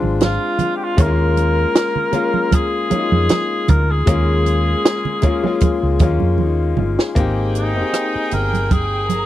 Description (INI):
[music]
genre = lush 1970s-style soul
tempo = 78 BPM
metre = 4/4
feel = swing 54% on 16ths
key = Ab major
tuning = A4 = 439 Hz
[part]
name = clear baby grand piano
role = accompaniment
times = 0.0-9.3 s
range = Ab3 to Ab4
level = -21 LUFS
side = left 4 dB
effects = none
[part]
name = hollow-body short-scale fingered electric bass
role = bass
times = 0.0-9.3 s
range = G1 to F2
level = -18 LUFS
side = equal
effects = none
[part]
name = congas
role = percussion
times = 0.0-9.3 s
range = none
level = -23 LUFS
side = right 7 dB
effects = none
[part]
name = warm cor anglais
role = melody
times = 0.2-9.3 s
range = Eb4 to Bb4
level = -21 LUFS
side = equal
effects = slapback echo
[part]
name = compact cocktail drum kit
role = drums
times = 0.2-9.3 s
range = hi-hat, kick drum, rim click, snare drum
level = -16 LUFS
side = right 1 dB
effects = none
[part]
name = clear studio violin section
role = second line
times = 7.2-9.3 s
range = Ab4 to Bb5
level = -27 LUFS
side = right 1 dB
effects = none
[sound]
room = little or no reverb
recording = dry, close 1970s-style studio recording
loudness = -15 LUFS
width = side -13 dB against mid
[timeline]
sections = 0.0-7.2 A section; 7.2-9.3 B section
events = drum fill 6.4-7.2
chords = 0.0 Bb9 (rootless); 1.0 Eb7sus4; 7.2 Abmaj7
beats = 0.21 | 0.98 1.76 2.53 3.30 | 4.08 4.85 5.62 6.39 | 7.17 7.94 8.71